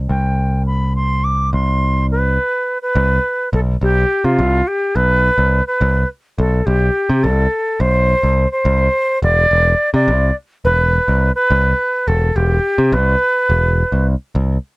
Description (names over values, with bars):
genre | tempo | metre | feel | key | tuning
progressive instrumental, band music in an uneven meter | 211 BPM (eighths) | 5/8 | straight | C major | A4 = 445 Hz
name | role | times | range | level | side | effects
modern bright picked electric bass | bass | 0.0-14.6 s | E1 to C3 | -15 LUFS | equal | none
reedy silver concert flute | melody | 0.1-14.1 s | F4 to D6 | -16 LUFS | equal | none
room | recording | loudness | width
little or no reverb | none | -13 LUFS | side -22 dB against mid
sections
0.0-3.0 A section; 3.0-14.3 B section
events
break 2.4-3.0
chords
0.0 C5; 8.7 N.C.